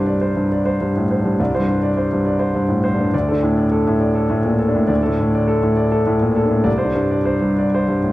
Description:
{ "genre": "neoclassical minimalist piano", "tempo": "102 BPM", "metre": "3/4", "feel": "rubato", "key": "unclear", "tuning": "A4 = 439 Hz", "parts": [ { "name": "warm grand piano", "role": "solo", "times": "0.0-8.1 s", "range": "C2 to D5", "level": "-15 LUFS", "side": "equal", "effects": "none" } ], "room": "moderate recital hall reverb, RT60 1.5 s", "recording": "none", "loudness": "-15 LUFS", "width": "side -17 dB against mid", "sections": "0.0-8.1 A section", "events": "none", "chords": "0.0 Csus2; 3.1 D5; 6.7 Csus2" }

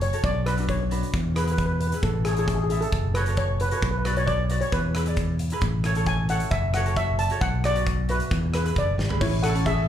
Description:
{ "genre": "calypso", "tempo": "134 BPM", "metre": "4/4", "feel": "straight", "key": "A major", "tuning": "A4 = 440 Hz", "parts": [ { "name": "steel pan", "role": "melody", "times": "0.0-9.9 s", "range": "E4 to A5", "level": "-28 LUFS", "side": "left 1 dB", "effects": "slapback echo" }, { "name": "fingered electric bass", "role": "bass", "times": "0.0-9.9 s", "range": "F#1 to E2", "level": "-25 LUFS", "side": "equal", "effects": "none" }, { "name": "big rock drum kit", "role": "drums", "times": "0.0-9.8 s", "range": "crash cymbal, hi-hat, kick drum, rim click, snare drum, toms", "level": "-29 LUFS", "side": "equal", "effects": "none" }, { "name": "ukulele", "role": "accompaniment", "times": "0.1-9.8 s", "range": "C#4 to E5", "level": "-32 LUFS", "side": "right 1 dB", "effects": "slapback echo" } ], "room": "light reverb, small room ambience", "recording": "live gig heard through the venue's PA, club reverb", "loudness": "-22 LUFS", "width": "side -10 dB against mid", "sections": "0.0-9.2 A section", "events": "steel pan solo 0.0-9.2; drum fill 9.0", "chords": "0.2 Bm; 1.1 E; 2.0 A; 2.9 F#m; 3.8 Bm; 4.7 E; 5.6 A; 6.5 F#m; 7.4 Bm; 8.3 E; 9.2 Amaj7" }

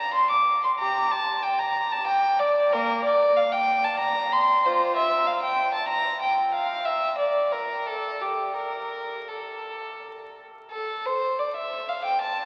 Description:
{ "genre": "classical, baroque-style suite movement for unaccompanied violin", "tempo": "82-98 BPM", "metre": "3/4", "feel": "rubato", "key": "unclear", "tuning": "A4 = 438 Hz", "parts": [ { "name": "warm violin", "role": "solo", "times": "0.0-12.5 s", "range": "Bb3 to D6", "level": "-25 LUFS", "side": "equal", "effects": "none" } ], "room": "wet cathedral reverb, RT60 6.9 s", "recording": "very old 78 rpm record, vinyl crackle", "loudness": "-24 LUFS", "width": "mono", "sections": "0.0-10.7 A section; 10.7-12.5 A section", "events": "none", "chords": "none" }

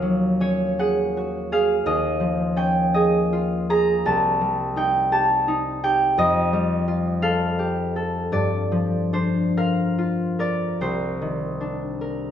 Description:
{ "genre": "classical, solo harp piece", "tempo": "47-58 BPM (dotted quarters)", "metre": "6/8", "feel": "rubato", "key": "C dorian", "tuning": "A4 = 440 Hz", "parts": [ { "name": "concert harp", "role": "solo", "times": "0.0-12.3 s", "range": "C2 to Bb5", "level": "-20 LUFS", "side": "equal", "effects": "none" } ], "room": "wet recital hall reverb, RT60 1.4 s", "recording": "none", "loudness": "-20 LUFS", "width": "side -9 dB against mid", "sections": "0.0-12.3 A section", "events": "none", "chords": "0.0 Ebm11; 1.9 Dbadd9/Eb; 4.1 Cm6; 6.2 F9; 8.3 Gm7; 10.8 Cm9" }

